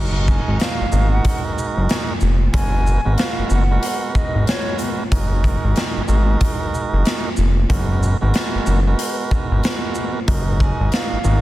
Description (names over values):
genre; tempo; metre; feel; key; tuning
hip hop, boom-bap hip-hop; 93 BPM; 4/4; swing 62% on 16ths; F# major; A4 = 441 Hz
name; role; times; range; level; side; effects
tonewheel organ; accompaniment; 0.0-11.4 s; G#3 to A#4; -25 LUFS; right 4 dB; overdrive, high-pass filter, low-pass filter
fat analog bass; bass; 0.0-11.4 s; E#1 to G#1; -17 LUFS; equal; none
breathy mellow silver concert flute; melody; 0.3-4.8, 10.6-11.4 s; C#5 to G#5; -28 LUFS; equal; high-pass filter, low-pass filter, ping-pong delay
raw garage drum kit; drums; 0.3-11.4 s; hi-hat, kick drum, shaker, snare drum; -20 LUFS; equal; none
room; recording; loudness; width
little or no reverb; dense, heavily limited modern master; -16 LUFS; side -16 dB against mid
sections
0.0-11.4 A section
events
none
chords
0.0 F#69; 2.5 G#m9/F#; 5.1 F#69; 7.7 G#m9/F#; 10.3 F#69